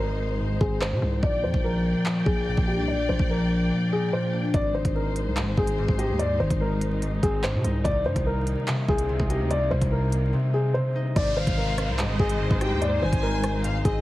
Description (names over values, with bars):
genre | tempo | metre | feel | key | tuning
hip hop, drill | 145 BPM | 4/4 | half-time | unclear | A4 = 440 Hz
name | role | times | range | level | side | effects
dark concert grand piano | melody | 0.0-14.0 s | G4 to D5 | -28 LUFS | left 1 dB | low-pass filter, ping-pong delay
concert harp | accompaniment | 0.0-14.0 s | Ab2 to Eb4 | -27 LUFS | left 1 dB | low-pass filter
dark symphonic string section | sustained chords | 0.0-14.0 s | C3 to G5 | -34 LUFS | equal | none
distorted 808-style bass | bass | 0.0-14.0 s | Ab1 to C3 | -28 LUFS | equal | distortion
downlifter | sound effects | 0.0-1.2, 11.2-14.0 s | none | -39 LUFS | right 1 dB | none
drill drum kit | drums | 0.6-13.9 s | handclaps, hi-hat, kick drum, rim click | -27 LUFS | equal | none
warm studio violin section | second line | 11.4-14.0 s | Eb5 to Ab5 | -33 LUFS | left 1 dB | ping-pong delay
room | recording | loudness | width
small room ambience | heavily compressed radio sound, vinyl crackle | -22 LUFS | side -16 dB against mid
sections
0.0-11.2 A section; 11.2-14.0 B section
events
break 0.0-4.5; filter sweep 0.0-4.5; drums muted 3.7-4.5, 10.3-11.2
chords
0.0 Ab; 1.2 Bb6; 4.5 Ab; 7.8 Cm7; 11.2 Ab